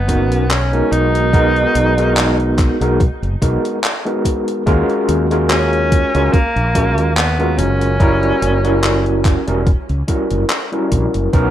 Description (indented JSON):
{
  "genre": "vaporwave",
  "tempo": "72 BPM",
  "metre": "4/4",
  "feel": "swing 54% on 16ths",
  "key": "unclear",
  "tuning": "A4 = 440 Hz",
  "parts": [
    { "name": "breathy tenor saxophone", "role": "melody", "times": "0.0-9.2 s", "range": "A#3 to D#4", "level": "-19 LUFS", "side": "equal", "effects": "tape echo" },
    { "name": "mellow fretless electric bass", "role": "bass", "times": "0.0-11.5 s", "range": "E1 to D#2", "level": "-18 LUFS", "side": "equal", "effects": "none" },
    { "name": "overdriven tine electric piano", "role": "accompaniment", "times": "0.1-11.5 s", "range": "G3 to A#4", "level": "-17 LUFS", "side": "equal", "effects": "medium tremolo, lush chorus, tape echo" },
    { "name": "electronic kick drum", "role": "drums", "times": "0.1-11.5 s", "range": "none", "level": "-16 LUFS", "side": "equal", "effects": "overdrive" },
    { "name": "gated 80s digital drum machine", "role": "drums", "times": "0.1-11.5 s", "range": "handclaps, hi-hat", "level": "-21 LUFS", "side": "equal", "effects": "gated reverb, overdrive" }
  ],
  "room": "moderate small room reverb, RT60 0.5 s",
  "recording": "rough home demo mix",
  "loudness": "-13 LUFS",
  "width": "side -11 dB against mid",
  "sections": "0.0-11.5 A section",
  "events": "none",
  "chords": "0.0 Bmaj7; 0.9 G#m9/B; 4.7 D#m11; 8.0 F#7b9",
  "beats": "0.50 | 1.33 2.17 3.00 3.83 | 4.67 5.50 6.33 7.17 | 8.00 8.83 9.67 10.50 | 11.33"
}